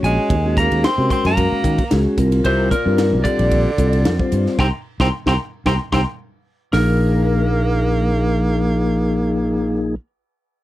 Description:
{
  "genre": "electric jazz fusion",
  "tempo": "112 BPM",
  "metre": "4/4",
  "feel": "swing 54% on 16ths",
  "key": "unclear",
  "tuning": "A4 = 441 Hz",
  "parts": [
    { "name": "lightly driven lead guitar", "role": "melody", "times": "0.0-10.0 s", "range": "Bb4 to C6", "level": "-22 LUFS", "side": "left 2 dB", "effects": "none" },
    { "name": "mellow tonewheel organ", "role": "accompaniment", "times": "0.0-10.0 s", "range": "F3 to Db5", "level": "-20 LUFS", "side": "left 2 dB", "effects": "slow rotary speaker" },
    { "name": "sustaining fretless electric bass", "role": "bass", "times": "0.0-10.0 s", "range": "Bb1 to Eb3", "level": "-19 LUFS", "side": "equal", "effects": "none" },
    { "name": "crisp fusion drum kit", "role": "drums", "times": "0.0-6.9 s", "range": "hi-hat, kick drum, ride cymbal, snare drum", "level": "-23 LUFS", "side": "equal", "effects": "none" },
    { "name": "edgy tenor saxophone", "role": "second line", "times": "0.1-10.0 s", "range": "Bb2 to C4", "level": "-25 LUFS", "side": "right 4 dB", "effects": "none" }
  ],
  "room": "little or no reverb",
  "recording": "none",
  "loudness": "-15 LUFS",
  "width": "side -15 dB against mid",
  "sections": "0.0-6.7 A section; 6.7-10.6 B section",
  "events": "band accent 4.6-6.7; drum fill 5.7-6.7",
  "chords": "0.0 Ebm11; 2.2 C9sus4; 6.7 Bb7sus4"
}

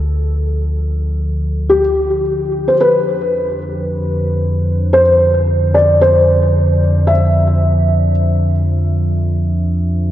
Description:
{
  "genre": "ambient",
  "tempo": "56 BPM",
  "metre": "4/4",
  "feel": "straight",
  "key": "unclear",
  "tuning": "A4 = 440 Hz",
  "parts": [
    { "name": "felt-muted upright piano", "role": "melody", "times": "0.0-8.1 s", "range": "G4 to E5", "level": "-15 LUFS", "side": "left 1 dB", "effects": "ping-pong delay" },
    { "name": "warm sub bass", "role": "bass", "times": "0.0-10.1 s", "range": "D2 to F2", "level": "-16 LUFS", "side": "equal", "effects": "none" },
    { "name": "analog drone", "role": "drone", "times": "0.0-10.1 s", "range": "D3 to F3", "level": "-21 LUFS", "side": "right 1 dB", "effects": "chorus" }
  ],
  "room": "wet cathedral reverb, RT60 6.0 s",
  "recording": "worn, warbling old tape, cassette tape, warbly pitch drift, nothing above 8.0 kHz",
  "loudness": "-12 LUFS",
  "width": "side -12 dB against mid",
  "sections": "0.0-10.1 A section",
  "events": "fade-in on synth drone 0.0-10.1",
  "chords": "0.0 Dm; 2.8 F5"
}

